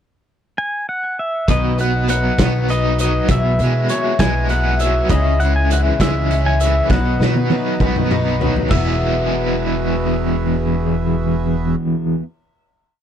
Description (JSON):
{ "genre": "folk rock and heartland rock", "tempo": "66 BPM (dotted quarters)", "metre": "6/8", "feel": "straight", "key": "E major", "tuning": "A4 = 440 Hz", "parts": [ { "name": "pedal steel guitar", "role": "melody", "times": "0.6-11.7 s", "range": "C#5 to G#5", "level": "-23 LUFS", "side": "right 1 dB", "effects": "tape echo" }, { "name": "picked old ladder-braced acoustic guitar", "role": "accompaniment", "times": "1.5-12.3 s", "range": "B2 to B4", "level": "-24 LUFS", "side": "left 7 dB", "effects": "none" }, { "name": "accordion", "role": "sustained chords", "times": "1.5-11.8 s", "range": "D#4 to E5", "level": "-31 LUFS", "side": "right 5 dB", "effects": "none" }, { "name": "overdriven semi-hollow guitar", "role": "riff", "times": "1.5-12.2 s", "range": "E2 to E4", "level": "-20 LUFS", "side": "right 1 dB", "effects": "tremolo" }, { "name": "upright bass", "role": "bass", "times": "1.5-11.7 s", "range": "E1 to B2", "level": "-19 LUFS", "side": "equal", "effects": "none" }, { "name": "loose indie drum kit", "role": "drums", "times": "1.5-8.9 s", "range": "crash cymbal, hi-hat, kick drum, snare drum, toms", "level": "-20 LUFS", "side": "equal", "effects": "none" } ], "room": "little or no reverb", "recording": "none", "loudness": "-15 LUFS", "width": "side -9 dB against mid", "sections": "0.0-1.5 pickup bar; 1.5-8.7 pre-chorus; 8.7-12.3 final chord", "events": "drum fill 6.9-8.7", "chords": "0.0 N.C.; 1.5 B; 3.3 Eadd9/B; 5.1 C#m; 6.9 B; 8.7 Eadd9" }